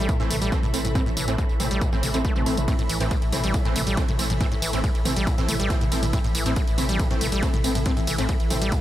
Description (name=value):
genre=driving peak-time techno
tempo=139 BPM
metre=4/4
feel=straight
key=A minor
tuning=A4 = 440 Hz
part: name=acid bass, saw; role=riff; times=0.0-8.8 s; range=A2 to A3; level=-29 LUFS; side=equal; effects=cassette tape, sidechain pumping, digital delay
part: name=saturated sub bass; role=bass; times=0.0-8.7 s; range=A1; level=-29 LUFS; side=equal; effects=tube saturation, sidechain pumping, low-pass filter
part: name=swarming drone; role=drone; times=0.0-8.8 s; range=A2 to E3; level=-32 LUFS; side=right 1 dB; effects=built-in reverb, sidechain pumping
part: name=granular cloud pad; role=texture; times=0.0-8.8 s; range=A4 to B5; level=-33 LUFS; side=left 1 dB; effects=built-in reverb, sidechain pumping
part: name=electronic kick drum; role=drums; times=0.1-8.8 s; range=none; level=-25 LUFS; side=equal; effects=none
part: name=punchy analog drum machine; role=drums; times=0.1-8.8 s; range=hi-hat, ride cymbal, tambourine, toms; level=-30 LUFS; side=equal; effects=sidechain pumping on hats, sidechain pumping on cymbals, sidechain pumping on perc, sidechain pumping on toms
part: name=rave stab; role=stabs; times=0.2-8.6 s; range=E3 to C4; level=-30 LUFS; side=right 1 dB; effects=chorus, built-in reverb, sidechain pumping, digital delay
room=light reverb, digital ambience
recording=none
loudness=-21 LUFS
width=side -13 dB against mid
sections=0.0-8.8 A section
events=none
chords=0.0 Am